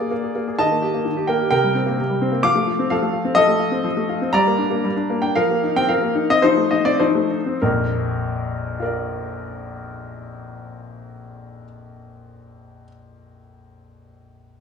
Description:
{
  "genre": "classical-period piano sonatina",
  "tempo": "98-132 BPM",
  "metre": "4/4",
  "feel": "rubato",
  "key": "Bb major",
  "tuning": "A4 = 440 Hz",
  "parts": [
    { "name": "clear grand piano", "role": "solo", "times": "0.0-14.6 s", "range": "Bb1 to D6", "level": "-18 LUFS", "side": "left 1 dB", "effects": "none" }
  ],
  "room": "wet recital hall reverb, RT60 1.4 s",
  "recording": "small room reverb",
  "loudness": "-17 LUFS",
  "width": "side -6 dB against mid",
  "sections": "0.0-7.6 A section; 7.6-12.3 B section",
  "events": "slowing down 2.5-7.6",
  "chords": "0.0 Bb7; 0.6 Eb; 1.5 C5; 2.5 F; 4.4 Gm; 5.4 F7sus4; 6.4 F7; 7.6 Bb",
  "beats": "0.12 0.60 1.06 | 1.52 1.99 2.45 2.91 | 3.38 3.85 4.36 4.85 | 5.36 5.89 6.43 7.00 | 7.60 8.20 8.79 9.39 | 9.98 10.57 11.16 11.75"
}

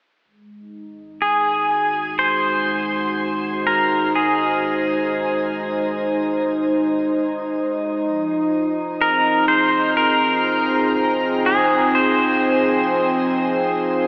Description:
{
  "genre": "ambient",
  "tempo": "62 BPM",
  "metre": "4/4",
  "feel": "straight",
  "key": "Ab mixolydian",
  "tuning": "A4 = 440 Hz",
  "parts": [
    { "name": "warm analog pad", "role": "sustained chords", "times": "0.2-14.1 s", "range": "F3 to C5", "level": "-23 LUFS", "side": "equal", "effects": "chorus" },
    { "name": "warm sub bass", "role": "bass", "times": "0.2-14.1 s", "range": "F1 to Ab1", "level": "-47 LUFS", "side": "equal", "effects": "none" },
    { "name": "pedal steel guitar", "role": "melody", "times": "1.2-14.1 s", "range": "Ab4 to C5", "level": "-22 LUFS", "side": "equal", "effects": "tape echo" }
  ],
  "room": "wet shimmer reverb, RT60 7.7 s",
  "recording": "AM radio sound",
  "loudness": "-19 LUFS",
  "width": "mono",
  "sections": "0.2-14.1 A section",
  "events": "none",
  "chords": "0.2 Ab7; 8.0 Fm7",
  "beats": "| 0.23 1.22 2.20 3.18 | 4.16 5.13 6.11 7.08 | 8.05 9.02 9.99 10.96 | 11.94 12.92 13.90"
}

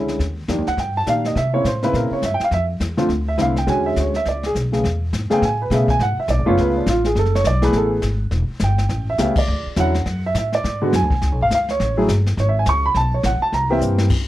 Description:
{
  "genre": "jazz piano trio",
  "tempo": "207 BPM",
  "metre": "4/4",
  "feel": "swing 60% on 8ths",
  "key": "A major from 4.8 s",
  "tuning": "A4 = 440 Hz",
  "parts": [
    { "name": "warm baby grand piano", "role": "melody", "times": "0.0-14.1 s", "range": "Db3 to C#6", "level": "-19 LUFS", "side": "right 1 dB", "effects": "none" },
    { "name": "upright bass", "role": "bass", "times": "0.0-14.1 s", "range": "E1 to C3", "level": "-21 LUFS", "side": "equal", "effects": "none" },
    { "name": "jazz brush drum kit", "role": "drums", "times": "0.1-14.3 s", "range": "brushed snare drum, crash cymbal, hi-hat, kick drum, snare drum", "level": "-26 LUFS", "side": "left 2 dB", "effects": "none" }
  ],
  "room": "light reverb",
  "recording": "worn, warbling old tape, cassette tape, warbly pitch drift",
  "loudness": "-17 LUFS",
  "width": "side -14 dB against mid",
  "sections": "0.0-4.8 A section; 4.8-14.1 B section",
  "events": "band accent 9.3; drum fill 13.8",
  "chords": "0.2 Ebmaj7; 1.4 C7b9; 2.5 F6; 3.7 E13; 4.8 Amaj9; 6.0 F#madd9; 6.6 C#7b13; 7.2 F#m11; 8.3 Em; 8.9 A9; 9.5 Dadd9; 10.6 G#m7b5; 11.2 C#5; 11.8 F#madd9 (rootless); 13.0 Asus2; 13.5 C7",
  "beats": "| 0.20 0.48 0.78 1.06 | 1.35 1.65 1.94 2.23 | 2.52 2.81 3.10 3.39 | 3.68 3.97 4.26 4.55 | 4.84 5.13 5.42 5.71 | 6.00 6.29 6.58 6.87 | 7.16 7.45 7.74 8.03 | 8.32 8.61 8.90 9.19 | 9.48 9.77 10.06 10.35 | 10.64 10.93 11.21 11.51 | 11.79 12.08 12.37 12.66 | 12.95 13.24 13.53 13.82 | 14.11"
}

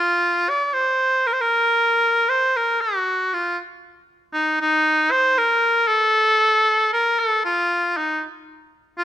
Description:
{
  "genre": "turkish",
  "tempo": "free time",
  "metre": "none",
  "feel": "none",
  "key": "F makam hicaz",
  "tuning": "A4 = 440 Hz",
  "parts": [
    { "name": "bright oboe", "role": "solo", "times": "0.0-9.0 s", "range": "Eb4 to D5-40c", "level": "-17 LUFS", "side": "equal", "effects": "none" }
  ],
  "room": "light reverb",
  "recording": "none",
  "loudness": "-17 LUFS",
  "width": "side -11 dB against mid",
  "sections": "0.0-9.0 A section",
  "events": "none",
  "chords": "none",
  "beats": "free time"
}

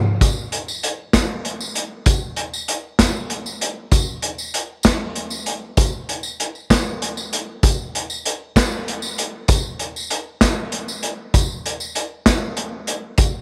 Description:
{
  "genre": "rock",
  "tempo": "65 BPM (dotted quarters)",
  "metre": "6/8",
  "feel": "straight",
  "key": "none",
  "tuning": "none",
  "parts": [
    { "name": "vintage drum kit", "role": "drums", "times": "0.2-13.3 s", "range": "hi-hat, kick drum, snare drum", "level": "-20 LUFS", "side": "equal", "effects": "none" },
    { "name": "tambourine", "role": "percussion", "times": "0.2-13.3 s", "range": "none", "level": "-32 LUFS", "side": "equal", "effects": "none" }
  ],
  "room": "moderate plate reverb, RT60 3.0 s",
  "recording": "none",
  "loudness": "-21 LUFS",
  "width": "mono",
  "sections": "0.0-13.4 A section",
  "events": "drum fill 0.0",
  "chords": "none",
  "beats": "| 0.21 1.14 | 2.07 3.00 | 3.92 4.85 | 5.78 6.70 | 7.63 8.56 | 9.48 10.41 | 11.34 12.26 | 13.19"
}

